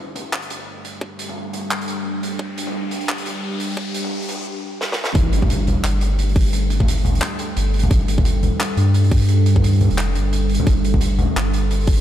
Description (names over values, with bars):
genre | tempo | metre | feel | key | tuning
half-time drum and bass | 174 BPM | 4/4 | swing 58% on 16ths, half-time | unclear | A4 = 440 Hz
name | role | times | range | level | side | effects
deep dark ambient pad | sustained chords | 0.6-12.0 s | G3 to C6 | -25 LUFS | right 1 dB | chorus, built-in reverb, sidechain pumping
saturated sub bass | bass | 0.0-12.0 s | F1 to G2 | -18 LUFS | equal | high-pass filter
riser and impact | sound effects | 2.2-6.5 s | none | -31 LUFS | equal | none
oversized low-tuned drum kit | drums | 0.2-12.0 s | handclaps, hi-hat, snare drum, toms | -24 LUFS | equal | high-pass filter on hats, high-pass filter on toms, high-pass filter on snare, high-pass filter on room
electronic kick drum | drums | 1.0-12.0 s | none | -17 LUFS | equal | high-pass filter on kick, high-pass filter on room
room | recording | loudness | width
light reverb, studio ambience | dark, warm production, high-pass filter | -17 LUFS | side -12 dB against mid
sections
0.0-5.2 A section; 5.2-12.0 B section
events
build-up 0.0-5.2; riser 2.2-4.5; drum fill 4.8-5.2; drop 5.2-12.0; impact 5.2-6.5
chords
0.0 G5